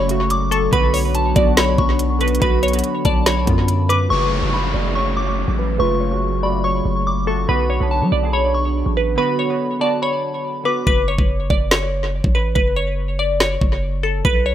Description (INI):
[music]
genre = hip hop, trap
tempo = 142 BPM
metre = 4/4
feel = half-time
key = F# minor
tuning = A4 = 440 Hz
[part]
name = glassy wavetable pluck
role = melody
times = 0.0-14.5 s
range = A4 to D5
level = -22 LUFS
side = equal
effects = chorus, low-pass filter, tape echo
[part]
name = soft synth bell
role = second line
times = 0.0-10.9 s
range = A5 to D6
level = -24 LUFS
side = left 1 dB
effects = chorus, tape echo
[part]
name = glassy digital keys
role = accompaniment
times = 0.0-10.9 s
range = C#3 to A4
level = -25 LUFS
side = right 2 dB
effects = chorus, low-pass filter
[part]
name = warbly tape-like pad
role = sustained chords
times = 0.0-10.8 s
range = F#3 to D4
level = -27 LUFS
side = left 2 dB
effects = chorus, built-in reverb, low-pass filter
[part]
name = long sustained 808-style bass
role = bass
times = 0.0-14.5 s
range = F#1 to F#3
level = -21 LUFS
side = equal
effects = none
[part]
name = trap drum kit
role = drums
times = 0.1-4.0, 10.9-14.3 s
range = hi-hat, kick drum, snare drum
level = -19 LUFS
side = equal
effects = tape echo
[part]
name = downlifter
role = sound effects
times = 4.1-7.5 s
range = none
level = -28 LUFS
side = equal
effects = none
[sound]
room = digital ambience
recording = echo-heavy mix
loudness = -16 LUFS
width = side -11 dB against mid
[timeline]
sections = 0.0-4.1 A section; 4.1-10.9 B section; 10.9-14.5 C section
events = filter sweep 4.1-10.9; hi-hats muted 10.9-14.5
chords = 0.0 F#m; 0.7 Bm; 4.1 F#m; 7.5 Bm; 10.9 F#5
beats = 0.30 | 0.73 1.15 1.57 2.00 | 2.42 2.84 3.26 3.69 | 4.11 4.53 4.95 5.38 | 5.80 6.22 6.64 7.07 | 7.49 7.91 8.33 8.76 | 9.18 9.60 10.02 10.45 | 10.87 11.29 11.71 12.13 | 12.56 12.98 13.40 13.83 | 14.25